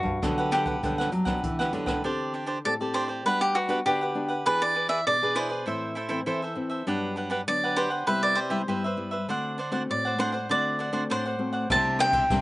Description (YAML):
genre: samba and choro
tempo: 99 BPM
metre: 4/4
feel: straight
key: G major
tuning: A4 = 440 Hz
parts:
  - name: cavaquinho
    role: melody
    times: 0.0-12.4 s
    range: F#4 to A5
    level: -26 LUFS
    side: equal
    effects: none
  - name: nylon-string guitar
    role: accompaniment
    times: 0.0-12.4 s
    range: G2 to A4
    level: -32 LUFS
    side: left 2 dB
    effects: none
  - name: nylon-string guitar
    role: bass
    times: 0.0-2.0, 11.7-12.4 s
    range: G2 to F#3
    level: -30 LUFS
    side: equal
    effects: none
  - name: jazz brush drum kit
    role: drums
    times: 0.1-2.0, 11.7-12.4 s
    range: hi-hat, kick drum, ride cymbal, rim click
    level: -32 LUFS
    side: equal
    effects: none
  - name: cavaquinho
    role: accompaniment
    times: 0.2-12.2 s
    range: D4 to F#5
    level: -30 LUFS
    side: right 2 dB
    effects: none
room: little or no reverb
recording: nothing above 11.0 kHz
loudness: -24 LUFS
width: side -19 dB against mid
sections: 0.0-2.0 A section; 2.0-12.4 B section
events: none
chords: 0.0 Gmaj7; 2.0 D7sus4; 3.3 Gmaj7; 4.5 E7; 5.7 Am; 6.9 Gmaj7; 8.1 Cmaj7; 9.3 D7; 11.7 Cadd9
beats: 0.23 0.83 1.44 | 2.04 2.65 3.25 3.86 | 4.46 5.06 5.67 6.27 | 6.87 7.48 8.08 8.68 | 9.29 9.89 10.49 11.10 | 11.70 12.30